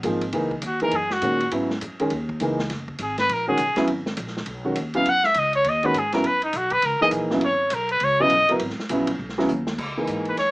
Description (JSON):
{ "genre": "modal jazz", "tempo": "203 BPM", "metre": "4/4", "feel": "swing 62% on 8ths", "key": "C# dorian", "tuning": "A4 = 441 Hz", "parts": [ { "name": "warm baby grand piano", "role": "accompaniment", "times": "0.0-10.4 s", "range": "C#3 to A#4", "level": "-24 LUFS", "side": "equal", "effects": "none" }, { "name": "upright bass", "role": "bass", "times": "0.0-10.5 s", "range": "F#1 to A#2", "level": "-32 LUFS", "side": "equal", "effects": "none" }, { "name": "vintage drum kit", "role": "drums", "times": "0.0-10.5 s", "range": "crash cymbal, hi-hat, kick drum, ride cymbal, snare drum", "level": "-33 LUFS", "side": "equal", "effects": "none" }, { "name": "bright trumpet", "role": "melody", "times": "0.7-10.5 s", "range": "D#4 to F#5", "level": "-20 LUFS", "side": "equal", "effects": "none" } ], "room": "light reverb", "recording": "small speaker sound", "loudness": "-20 LUFS", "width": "side -22 dB against mid", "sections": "0.3-9.8 A section", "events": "trumpet solo 0.3-9.8; drum fill 9.5", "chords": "0.3 C#9sus4; 9.8 C#sus4" }